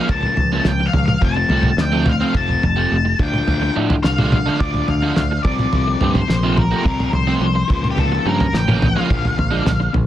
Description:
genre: indie rock.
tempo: 107 BPM.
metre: 4/4.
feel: straight.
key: F major.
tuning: A4 = 440 Hz.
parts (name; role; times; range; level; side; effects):
octave-fuzz lead guitar; melody; 0.0-9.9 s; G4 to A5; -22 LUFS; left 1 dB; distortion.
crunchy overdriven guitar; riff; 0.0-9.8 s; Bb2 to D4; -23 LUFS; right 5 dB; analog chorus, digital delay.
overdriven semi-hollow guitar; riff; 0.0-10.1 s; Bb2 to F4; -23 LUFS; left 7 dB; none.
picked electric bass; bass; 0.1-10.1 s; F1 to A2; -21 LUFS; equal; none.
cloth-damped thuddy drum kit; drums; 0.1-10.1 s; kick drum, snare drum, toms; -19 LUFS; equal; none.
room: light reverb.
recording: dense, heavily limited modern master.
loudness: -15 LUFS.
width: side -12 dB against mid.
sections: 0.0-10.1 A section.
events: none.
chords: 0.0 Bbm; 1.2 F; 3.2 Dm; 5.4 F; 7.7 Bbm/Db; 9.1 Bb7.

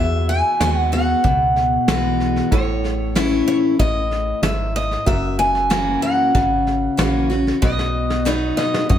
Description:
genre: honky-tonk and classic country.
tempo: 94 BPM.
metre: 4/4.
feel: straight.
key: E major.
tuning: A4 = 440 Hz.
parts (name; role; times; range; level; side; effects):
picked steel-string acoustic guitar; melody; 0.0-9.0 s; C#5 to G#5; -21 LUFS; equal; none.
clear upright piano; accompaniment; 0.0-9.0 s; E4 to E5; -31 LUFS; right 3 dB; none.
picked steel-string acoustic guitar; accompaniment; 0.0-9.0 s; E2 to F#4; -21 LUFS; left 2 dB; none.
metallic FM bass; bass; 0.0-9.0 s; F#1 to F#2; -23 LUFS; equal; none.
soft brush drum kit; drums; 0.3-9.0 s; hi-hat, kick drum, snare drum; -22 LUFS; equal; none.
room: moderate plate reverb, RT60 1.5 s.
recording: heard from further back in the room.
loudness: -16 LUFS.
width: side -10 dB against mid.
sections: 0.0-9.0 A section.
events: drum fill 7.6-9.0.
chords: 0.0 Eadd9; 2.5 A; 5.1 F#7; 7.6 B.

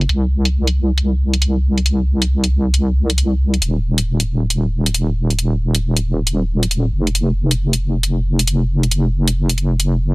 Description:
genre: UK garage, two-step garage.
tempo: 136 BPM.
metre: 4/4.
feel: swing 63% on 16ths.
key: unclear.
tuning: A4 = 442 Hz.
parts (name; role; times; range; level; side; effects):
deep soft wobble bass; bass; 0.0-10.1 s; Eb1 to C2; -15 LUFS; equal; chorus.
electronic hi-hat; drums; 0.0-9.9 s; none; -19 LUFS; equal; low-pass filter on snare, low-pass filter on hats, low-pass filter on cymbals.
room: little or no reverb.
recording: none.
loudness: -15 LUFS.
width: side -23 dB against mid.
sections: 0.0-10.1 A section.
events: none.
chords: none.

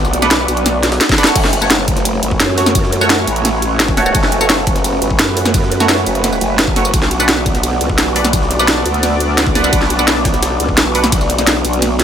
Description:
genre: dark technical drum and bass.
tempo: 172 BPM.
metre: 4/4.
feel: straight.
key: F# minor.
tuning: A4 = 440 Hz.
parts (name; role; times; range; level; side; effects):
sweeping resonant pad; sustained chords; 0.0-12.0 s; A3 to D5; -20 LUFS; right 1 dB; chorus, sidechain pumping.
growl bass; bass; 0.0-12.0 s; F#1 to F#2; -18 LUFS; equal; chorus, tube saturation.
drum and bass drum kit; drums; 0.0-12.0 s; crash cymbal, hi-hat, ride cymbal, snare drum, tambourine; -15 LUFS; equal; overdrive.
jungle sampler-style drum kit; drums; 0.0-12.0 s; ride cymbal, snare drum; -27 LUFS; right 1 dB; none.
band-passed chord stab; stabs; 0.2-11.0 s; A3 to F#5; -20 LUFS; right 2 dB; phaser, dub echo.
electronic kick drum; drums; 1.1-11.2 s; none; -17 LUFS; equal; overdrive.
room: light reverb.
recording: none.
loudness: -11 LUFS.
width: side -9 dB against mid.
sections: 0.0-12.0 A section.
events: drum fill 1.0-1.4.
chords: 0.0 Bm; 1.4 F#m; 6.9 Bm.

